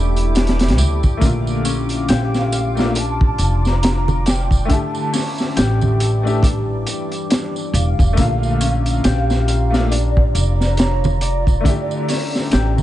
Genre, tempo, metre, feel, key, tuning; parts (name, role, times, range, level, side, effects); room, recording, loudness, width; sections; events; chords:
trip hop; 69 BPM; 4/4; swing 58% on 16ths; A4 = 440 Hz
deep dark ambient pad; sustained chords; 0.0-12.8 s; E3 to D6; -28 LUFS; right 1 dB; chorus, built-in reverb
concert harp; arpeggios; 0.0-12.8 s; C#4 to D5; -26 LUFS; left 5 dB; vintage 12-bit sampler grit, tape echo
upright bass; bass; 0.0-12.8 s; E1 to D2; -18 LUFS; equal
crunchy breakbeat drum kit; drums; 0.2-12.8 s; hi-hat, kick drum, snare drum; -19 LUFS; equal
tambourine and congas; percussion; 0.2-12.8 s; -28 LUFS; right 3 dB
clear upright piano; accompaniment; 1.2-12.8 s; D3 to G4; -24 LUFS; left 2 dB; tremolo
pure breathy sine lead; melody; 2.1-12.8 s; C#5 to Bb5; -26 LUFS; right 1 dB; ensemble chorus, vintage 12-bit sampler grit, tape echo
small room ambience; nothing above 10.4 kHz; -15 LUFS; side -13 dB against mid
0.0-12.8 A section
0.0 A7sus4; 1.2 Bbmaj7; 4.7 A7sus4; 8.2 Bbmaj7; 11.7 A7sus4